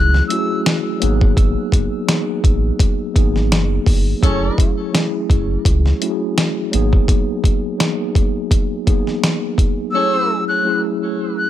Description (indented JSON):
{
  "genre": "hip hop, boom-bap hip-hop",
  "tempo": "84 BPM",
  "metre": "4/4",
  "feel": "swing 54% on 16ths",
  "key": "unclear",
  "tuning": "A4 = 438 Hz",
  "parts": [
    { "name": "reedy concert flute", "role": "melody", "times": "0.0-0.6, 9.9-11.5 s", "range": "E6 to F#6", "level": "-21 LUFS", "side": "left 2 dB", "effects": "high-pass filter, low-pass filter, ping-pong delay" },
    { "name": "mellow tine electric piano", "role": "accompaniment", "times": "0.0-11.5 s", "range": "F#3 to G#4", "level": "-20 LUFS", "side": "equal", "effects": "medium stereo tremolo, high-pass filter, low-pass filter" },
    { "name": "sub bass with octave", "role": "bass", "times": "0.0-7.0 s", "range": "F#1 to C#2", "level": "-17 LUFS", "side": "equal", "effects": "none" },
    { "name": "dusty soul sampler-style drum kit", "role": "drums", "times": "0.1-9.8 s", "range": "hi-hat, kick drum, snare drum", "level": "-16 LUFS", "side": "equal", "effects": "none" },
    { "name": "mellow horn section", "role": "stabs", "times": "4.2-4.7, 9.9-10.4 s", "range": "C#4 to C#5", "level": "-25 LUFS", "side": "right 2 dB", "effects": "high-pass filter, low-pass filter, ping-pong delay" }
  ],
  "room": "digital ambience",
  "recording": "none",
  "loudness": "-15 LUFS",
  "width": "side -12 dB against mid",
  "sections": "0.0-11.5 A section",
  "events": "none",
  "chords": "0.0 F#m9; 1.0 G#m9; 4.2 F#m9; 6.7 G#m9; 9.9 F#m9"
}